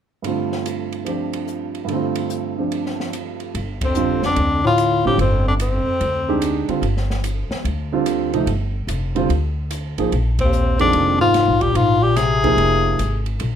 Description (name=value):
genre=modal jazz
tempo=146 BPM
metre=4/4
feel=swing 66% on 8ths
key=G minor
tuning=A4 = 440 Hz
part: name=warm concert grand piano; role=accompaniment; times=0.2-13.0 s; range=G2 to Ab4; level=-21 LUFS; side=right 4 dB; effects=none
part: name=open jazz drum kit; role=drums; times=0.2-13.5 s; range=hi-hat, kick drum, ride cymbal, snare drum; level=-30 LUFS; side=right 1 dB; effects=none
part: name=upright bass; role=bass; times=3.5-13.6 s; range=F1 to D2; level=-22 LUFS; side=equal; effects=none
part: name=bright tenor saxophone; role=melody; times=3.8-6.7, 10.4-13.3 s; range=C4 to Ab4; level=-18 LUFS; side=left 2 dB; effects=plate reverb
part: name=mellow bass clarinet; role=second line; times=3.8-6.7, 10.4-13.3 s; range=Eb2 to C3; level=-21 LUFS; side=left 3 dB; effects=none
room=moderate small room reverb, RT60 0.5 s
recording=none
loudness=-17 LUFS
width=side -8 dB against mid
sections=0.2-3.5 A section; 3.5-13.6 B section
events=band accent 3.8, 10.3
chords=0.2 G9sus4; 3.5 G7sus4; 10.1 Fm11